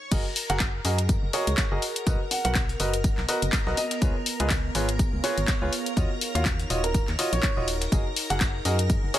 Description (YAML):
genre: piano house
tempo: 123 BPM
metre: 4/4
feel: swing 56% on 16ths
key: F# major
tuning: A4 = 440 Hz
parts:
  - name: string machine, violins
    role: sustained chords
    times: 0.0-9.2 s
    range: A#4 to C#6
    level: -37 LUFS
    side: left 1 dB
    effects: ensemble chorus, vintage 12-bit sampler grit, sidechain pumping
  - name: warm grand piano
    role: riff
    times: 0.1-9.2 s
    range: E#4 to F#5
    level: -30 LUFS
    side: equal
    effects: sidechain pumping
  - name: organ-like FM bass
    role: bass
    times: 0.1-9.1 s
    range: D#1 to F#2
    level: -28 LUFS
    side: equal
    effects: tube saturation, sidechain pumping
  - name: breakbeat sampler-style drum kit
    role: drums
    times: 0.1-9.2 s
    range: hi-hat, snare drum, tambourine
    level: -37 LUFS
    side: equal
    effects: none
  - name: electronic kick drum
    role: drums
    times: 0.1-9.0 s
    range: none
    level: -25 LUFS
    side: equal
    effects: none
  - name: house drum kit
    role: drums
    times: 0.1-9.2 s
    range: crash cymbal, handclaps, hi-hat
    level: -29 LUFS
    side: left 2 dB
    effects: none
  - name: warbly tape-like pad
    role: texture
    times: 1.0-9.2 s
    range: B3 to F#5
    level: -37 LUFS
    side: right 2 dB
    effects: chorus, built-in reverb, sidechain pumping
  - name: dark grand piano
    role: melody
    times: 1.3-9.2 s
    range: A#4 to F#5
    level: -34 LUFS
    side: right 2 dB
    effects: tape echo
room: digital ambience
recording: none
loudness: -23 LUFS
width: side -13 dB against mid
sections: 0.1-9.2 A section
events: drop 0.1-9.2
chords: 0.1 F#69; 2.1 Bmaj7; 4.0 C#7; 6.0 D#m9; 7.9 F#69